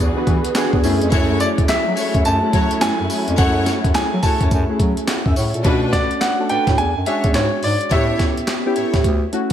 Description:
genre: R&B, new jack swing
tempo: 106 BPM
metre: 4/4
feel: swing 63% on 16ths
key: B minor from 5.6 s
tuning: A4 = 440 Hz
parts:
  - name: bright concert grand piano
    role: melody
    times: 0.0-9.5 s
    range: C#5 to B5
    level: -22 LUFS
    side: equal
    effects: slapback echo
  - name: warm analog keys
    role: accompaniment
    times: 0.0-9.5 s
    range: G#3 to F#5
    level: -22 LUFS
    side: equal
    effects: chorus, slapback echo
  - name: dark studio string section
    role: sustained chords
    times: 0.0-5.6 s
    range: D3 to G#4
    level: -26 LUFS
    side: equal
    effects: none
  - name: warm bass clarinet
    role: bass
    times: 0.0-9.3 s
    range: D2 to F#3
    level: -22 LUFS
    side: equal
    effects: none
  - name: breakbeat sampler-style drum kit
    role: drums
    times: 0.3-9.5 s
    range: handclaps, hi-hat, kick drum, snare drum, tambourine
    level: -20 LUFS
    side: equal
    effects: none
  - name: clear studio string section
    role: stabs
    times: 1.1-8.9 s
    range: D4 to C#5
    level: -27 LUFS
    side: right 1 dB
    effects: slapback echo
room: moderate lush hall reverb, RT60 2.2 s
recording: big arena sound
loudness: -15 LUFS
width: side -10 dB against mid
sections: 0.0-5.6 A section; 5.6-9.5 B section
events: synth keys fill 9.3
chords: 0.0 E9; 0.8 F#m7; 5.6 Bm7; 6.8 E13; 7.9 A7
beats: 0.55 | 1.12 1.68 2.25 2.82 | 3.38 3.95 4.51 5.08 | 5.65 6.21 6.78 7.34 | 7.91 8.48 9.04

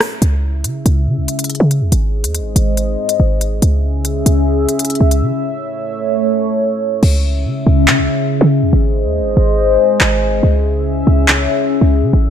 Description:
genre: hip hop, drill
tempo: 141 BPM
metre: 4/4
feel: half-time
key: C# harmonic minor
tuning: A4 = 440 Hz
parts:
  - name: dark analog pad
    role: sustained chords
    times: 0.0-12.3 s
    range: C#3 to E5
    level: -16 LUFS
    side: left 1 dB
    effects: chorus, phaser
  - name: drill drum kit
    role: drums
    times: 0.0-11.4 s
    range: crash cymbal, handclaps, hi-hat, rim click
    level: -17 LUFS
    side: equal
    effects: none
  - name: short 808-style bass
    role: bass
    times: 0.2-12.3 s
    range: G#1 to C#3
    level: -13 LUFS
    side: equal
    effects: none
room: light reverb, digital ambience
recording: none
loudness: -12 LUFS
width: side -9 dB against mid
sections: 0.2-7.0 A section; 7.0-12.3 B section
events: break 0.0, 5.3-7.0; hi-hats muted 7.0-12.3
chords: 0.2 C#m; 1.9 G#; 3.6 C#m; 5.3 A; 7.0 C#m; 8.7 G#; 10.4 C#m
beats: | 0.22 0.64 1.07 1.50 | 1.92 2.35 2.77 3.20 | 3.62 4.05 4.47 4.90 | 5.33 5.75 6.18 6.60 | 7.03 7.45 7.88 8.30 | 8.73 9.15 9.58 10.01 | 10.43 10.86 11.28 11.71 | 12.13

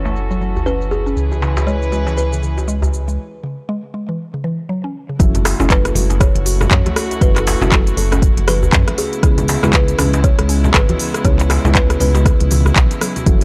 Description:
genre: afro house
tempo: 119 BPM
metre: 4/4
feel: swing 59% on 16ths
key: F# minor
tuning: A4 = 440 Hz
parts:
  - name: kalimba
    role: melody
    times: 0.0-13.0 s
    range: G#4 to C#5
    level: -27 LUFS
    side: equal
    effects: tape echo
  - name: warm chamber string section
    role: sustained chords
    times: 0.0-13.4 s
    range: C#3 to B4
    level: -28 LUFS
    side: equal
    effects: sidechain pumping
  - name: mallet-like synth pluck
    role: arpeggios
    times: 0.0-13.4 s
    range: B2 to F#4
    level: -28 LUFS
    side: equal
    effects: chorus, phaser, sidechain pumping, tape echo
  - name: smooth synth bass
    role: bass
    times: 0.0-13.4 s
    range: F#1 to F#2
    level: -19 LUFS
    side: equal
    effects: sidechain pumping
  - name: djembe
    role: percussion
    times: 0.0-13.4 s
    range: none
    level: -28 LUFS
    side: equal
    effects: none
  - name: afro-pop drum kit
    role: drums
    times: 0.1-13.4 s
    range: handclaps, hi-hat, rim click, shaker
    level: -22 LUFS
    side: equal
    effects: none
  - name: deep mellow chord stab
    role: stabs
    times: 5.2-13.4 s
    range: A3 to B4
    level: -27 LUFS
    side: equal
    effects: chorus, vintage 12-bit sampler grit, sidechain pumping, tape echo
  - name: electronic kick drum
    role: drums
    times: 5.2-13.4 s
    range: none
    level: -16 LUFS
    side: equal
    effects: none
  - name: congas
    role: percussion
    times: 5.2-13.4 s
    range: none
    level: -27 LUFS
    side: equal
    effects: none
room: little or no reverb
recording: dry, gritty hardware recording, transformer saturation, low-pass filter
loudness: -16 LUFS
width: mono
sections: 0.0-5.2 A section; 5.2-13.4 B section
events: break 3.2-5.2; drop 5.2-13.4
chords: 0.0 F#m7; 1.2 C#m7; 5.2 F#m7; 9.2 C#m7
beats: 0.16 0.66 | 1.16 1.67 2.17 2.68 | 3.18 3.69 4.19 4.69 | 5.20 5.70 6.21 6.71 | 7.21 7.72 8.22 8.73 | 9.23 9.74 10.24 10.74 | 11.25 11.75 12.26 12.76 | 13.27

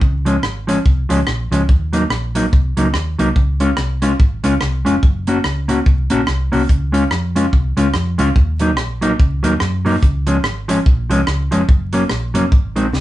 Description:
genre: ska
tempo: 144 BPM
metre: 4/4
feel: swing 59% on 8ths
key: Db major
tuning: A4 = 441 Hz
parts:
  - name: hollow-body short-scale fingered electric bass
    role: bass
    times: 0.0-13.0 s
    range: F1 to Gb2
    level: -20 LUFS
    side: equal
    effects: none
  - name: compact cocktail drum kit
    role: drums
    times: 0.0-13.0 s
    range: hi-hat, kick drum, rim click, snare drum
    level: -16 LUFS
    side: equal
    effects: none
  - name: mellow electric guitar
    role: accompaniment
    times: 0.3-12.9 s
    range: Eb3 to Gb4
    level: -17 LUFS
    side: equal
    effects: none
room: wet studio ambience, RT60 0.5 s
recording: band playing live in one room, vinyl crackle, nothing above 10.3 kHz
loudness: -14 LUFS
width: side -15 dB against mid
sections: 0.0-13.0 A section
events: none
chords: 0.0 Db; 1.7 Ebm; 3.4 Db; 5.0 Gb; 6.7 Db; 8.4 Ebm; 10.0 Db; 11.7 Gb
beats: | 0.02 0.44 0.85 1.27 | 1.69 2.11 2.52 2.94 | 3.36 3.78 4.20 4.61 | 5.03 5.45 5.87 6.28 | 6.70 7.12 7.53 7.95 | 8.37 8.78 9.20 9.61 | 10.03 10.44 10.86 11.28 | 11.69 12.11 12.52 12.94

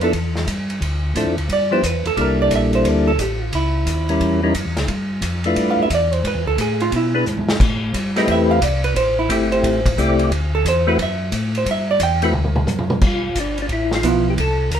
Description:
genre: soul jazz organ trio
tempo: 177 BPM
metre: 4/4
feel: swing 65% on 8ths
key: G mixolydian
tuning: A4 = 440 Hz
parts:
  - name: percussive tonewheel organ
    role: melody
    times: 0.0-14.8 s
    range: F3 to D5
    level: -19 LUFS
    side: left 2 dB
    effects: slow rotary speaker, overdrive
  - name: vintage hollow-body jazz guitar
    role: accompaniment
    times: 0.0-14.4 s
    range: F3 to G5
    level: -20 LUFS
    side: right 3 dB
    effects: none
  - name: mellow tonewheel organ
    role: bass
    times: 0.0-14.8 s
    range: G1 to B2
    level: -21 LUFS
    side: equal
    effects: slow rotary speaker
  - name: vintage drum kit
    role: drums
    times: 0.0-14.8 s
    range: crash cymbal, hi-hat, kick drum, ride cymbal, snare drum, toms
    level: -24 LUFS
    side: equal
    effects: none
room: moderate club reverb, RT60 0.8 s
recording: minimal, uncompressed stereo recording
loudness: -16 LUFS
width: side -9 dB against mid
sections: 0.0-13.0 A section; 13.0-14.8 B section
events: hollow-body jazz guitar solo 0.0-13.0; drum fill 7.3-7.6, 12.3-13.0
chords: 0.0 G13; 0.8 Dm7; 1.5 G6; 2.2 C13; 3.5 C#dim7; 4.9 G13; 6.2 E7; 7.6 Am7; 10.3 D9; 11.7 G69; 12.3 D; 13.0 G13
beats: 0.14 0.47 | 0.81 1.15 1.49 1.83 | 2.17 2.51 2.85 3.19 | 3.53 3.87 4.21 4.54 | 4.88 5.22 5.56 5.90 | 6.24 6.58 6.92 7.26 | 7.60 7.94 8.28 8.62 | 8.96 9.29 9.63 9.97 | 10.31 10.65 10.99 11.33 | 11.66 12.00 12.34 12.68 | 13.02 13.36 13.70 14.04 | 14.38 14.72

